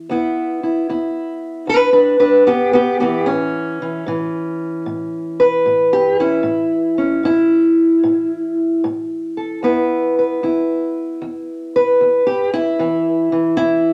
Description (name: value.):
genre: acoustic country blues, solo or duo.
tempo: 76 BPM.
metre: 4/4.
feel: swing 67% on 8ths.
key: unclear.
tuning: A4 = 440 Hz.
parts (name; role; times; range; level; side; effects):
fingerpicked steel-string acoustic guitar; solo; 0.0-13.9 s; E2 to B4; -17 LUFS; equal; none.
room: moderate studio reverb, RT60 0.7 s.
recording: none.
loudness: -17 LUFS.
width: mono.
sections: 0.0-13.9 A section.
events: none.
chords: 0.0 E5; 3.3 A; 9.6 E5.